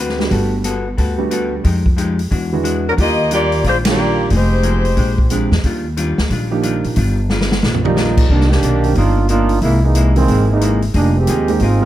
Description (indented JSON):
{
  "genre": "jazz, big band swing",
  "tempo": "180 BPM",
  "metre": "4/4",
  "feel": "swing 63% on 8ths",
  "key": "Eb major, C minor from 8.3 s",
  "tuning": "A4 = 438 Hz",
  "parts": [
    { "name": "vintage hollow-body jazz guitar", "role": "accompaniment", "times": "0.0-11.8 s", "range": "Bb2 to B4", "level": "-23 LUFS", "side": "left 4 dB", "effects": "none" },
    { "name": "upright bass", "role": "bass", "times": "0.0-11.9 s", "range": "F1 to Bb2", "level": "-16 LUFS", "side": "equal", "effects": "none" },
    { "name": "swinging big-band drum kit", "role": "drums", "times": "0.1-11.7 s", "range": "crash cymbal, hi-hat, kick drum, ride cymbal, snare drum, toms", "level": "-19 LUFS", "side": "equal", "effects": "none" },
    { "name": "clear concert grand piano", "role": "accompaniment", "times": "0.2-11.9 s", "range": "Eb3 to D5", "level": "-21 LUFS", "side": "right 4 dB", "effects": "none" },
    { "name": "mellow saxophone section", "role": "melody", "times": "2.9-5.3 s", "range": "F#3 to Eb5", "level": "-17 LUFS", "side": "left 1 dB", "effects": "none" },
    { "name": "bright trombone section", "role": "second line", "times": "7.8-11.9 s", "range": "Eb3 to G4", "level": "-17 LUFS", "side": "right 3 dB", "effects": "none" }
  ],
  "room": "light reverb",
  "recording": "close, detailed microphones",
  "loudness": "-13 LUFS",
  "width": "side -13 dB against mid",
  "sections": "0.0-8.3 A section; 8.3-11.9 B section",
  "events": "band accent 3.8; drum fill 7.3-8.0; trombone section solo 8.3-11.9",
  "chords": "0.3 Gmaj9; 1.6 Fm9; 2.3 E9; 3.0 Ebmaj9; 4.3 Fm11; 5.0 Bb13; 5.6 Ebmaj9; 8.3 Cm9; 9.6 C7alt; 10.9 Fm11"
}